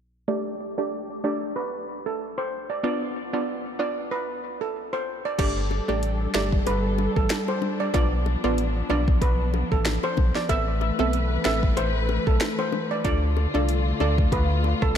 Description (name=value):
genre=dancehall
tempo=94 BPM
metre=4/4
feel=swing 56% on 16ths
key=unclear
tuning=A4 = 440 Hz
part: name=steel pan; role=melody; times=0.3-14.9 s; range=A4 to E5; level=-28 LUFS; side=right 3 dB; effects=low-pass filter, ping-pong delay
part: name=analog pluck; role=accompaniment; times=0.3-14.3 s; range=A3 to A4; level=-31 LUFS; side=right 1 dB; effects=chorus, sidechain pumping, low-pass filter
part: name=dark studio string section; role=sustained chords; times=5.4-15.0 s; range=D3 to B4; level=-29 LUFS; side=left 2 dB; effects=sidechain pumping
part: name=sub bass with octave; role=bass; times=5.4-15.0 s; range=G1 to D2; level=-25 LUFS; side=equal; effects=none
part: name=afro-pop drum kit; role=drums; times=5.4-15.0 s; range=crash cymbal, finger snaps, hi-hat, kick drum, rim click, snare drum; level=-26 LUFS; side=equal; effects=none
part: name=bongos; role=percussion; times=5.4-14.8 s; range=none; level=-36 LUFS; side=left 12 dB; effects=none
room=moderate cathedral reverb, RT60 4.8 s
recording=dreamy mix soaked in reverb, faint mains hum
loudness=-22 LUFS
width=side -8 dB against mid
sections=0.3-5.4 A section; 5.4-15.0 B section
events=filter sweep 0.3-5.4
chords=0.3 Gsus2; 2.8 Bdim; 5.4 Gsus2; 7.9 Bdim; 10.5 Amadd9; 13.0 Dm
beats=| 0.28 0.92 1.56 2.20 | 2.83 3.47 4.11 4.75 | 5.39 6.03 6.67 7.30 | 7.94 8.58 9.22 9.86 | 10.49 11.13 11.77 12.41 | 13.05 13.69 14.32 14.96